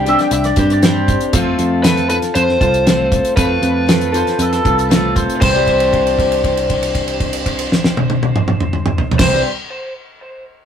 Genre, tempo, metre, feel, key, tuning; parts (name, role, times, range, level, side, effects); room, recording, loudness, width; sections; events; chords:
folk rock and heartland rock; 118 BPM; 4/4; straight; C major; A4 = 441 Hz
overdriven slide guitar; melody; 0.0-9.4 s; B4 to G5; -19 LUFS; equal; analog delay
picked steel-string acoustic guitar; accompaniment; 0.0-9.5 s; C3 to A4; -19 LUFS; left 2 dB
picked electric bass; bass; 0.0-9.4 s; C2 to G2; -20 LUFS; equal
mandolin; second line; 0.1-9.4 s; A4 to G5; -21 LUFS; right 2 dB
damped 70s drum kit; drums; 0.1-9.3 s; crash cymbal, hi-hat, kick drum, snare drum, toms; -16 LUFS; equal
wet small room reverb, RT60 0.5 s; rough rehearsal-room recording; -12 LUFS; side -8 dB against mid
0.0-5.4 A section; 5.4-9.5 B section
held note 5.4-9.2
0.0 Csus2; 1.3 F; 5.4 Cadd9